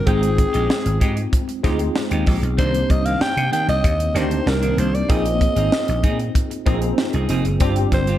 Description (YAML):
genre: polished 1980s jazz-funk pop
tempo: 96 BPM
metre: 4/4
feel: straight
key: unclear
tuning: A4 = 440 Hz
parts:
  - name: growling alto saxophone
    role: melody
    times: 0.0-8.2 s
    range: Ab4 to G5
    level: -23 LUFS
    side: equal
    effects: none
  - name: tine electric piano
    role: accompaniment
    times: 0.0-8.2 s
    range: G3 to G5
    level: -24 LUFS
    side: left 1 dB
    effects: fast stereo tremolo, analog chorus
  - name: clean electric guitar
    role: riff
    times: 0.1-8.2 s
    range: Eb3 to Ab4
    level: -28 LUFS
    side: right 2 dB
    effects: lush chorus
  - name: vintage slap bass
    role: bass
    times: 0.1-8.2 s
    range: F1 to C3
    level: -21 LUFS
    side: equal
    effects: none
  - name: crisp fusion drum kit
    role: drums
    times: 0.1-8.2 s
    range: hi-hat, kick drum, snare drum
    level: -21 LUFS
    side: equal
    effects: none
room: light reverb, studio ambience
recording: dark, warm production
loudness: -17 LUFS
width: side -12 dB against mid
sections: 0.0-8.2 A section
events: none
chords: 0.1 Fm9/Ab; 2.6 Cm9; 5.1 Bb9sus4; 7.6 G7sus4